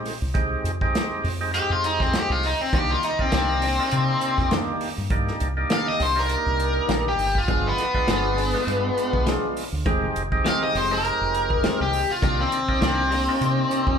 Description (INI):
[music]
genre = straight-eighth soul blues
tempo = 101 BPM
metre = 4/4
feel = swing 56% on 16ths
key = C minor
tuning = A4 = 445 Hz
[part]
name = percussive tonewheel organ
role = accompaniment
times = 0.0-14.0 s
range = Ab3 to G4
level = -28 LUFS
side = right 2 dB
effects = overdrive, slow rotary speaker
[part]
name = warm soul drum kit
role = drums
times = 0.1-14.0 s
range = hi-hat, kick drum, snare drum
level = -27 LUFS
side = right 1 dB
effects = none
[part]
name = fingered electric bass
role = bass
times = 0.2-14.0 s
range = F1 to C3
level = -28 LUFS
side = equal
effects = none
[part]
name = cranked stack guitar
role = melody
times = 1.6-14.0 s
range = B3 to F5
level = -23 LUFS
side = left 2 dB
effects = overdrive
[part]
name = direct-recorded clean electric guitar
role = stabs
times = 2.7-13.3 s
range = Eb3 to Ab4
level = -30 LUFS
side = left 3 dB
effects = none
[sound]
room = moderate large studio reverb, RT60 1.3 s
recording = band playing live in one room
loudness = -20 LUFS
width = side -7 dB against mid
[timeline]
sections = 0.0-14.0 A section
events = overdriven electric guitar solo 0.0-14.0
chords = 0.0 Fm9; 2.7 Cm9; 7.5 G7b9; 9.9 Fm9; 12.2 Cm9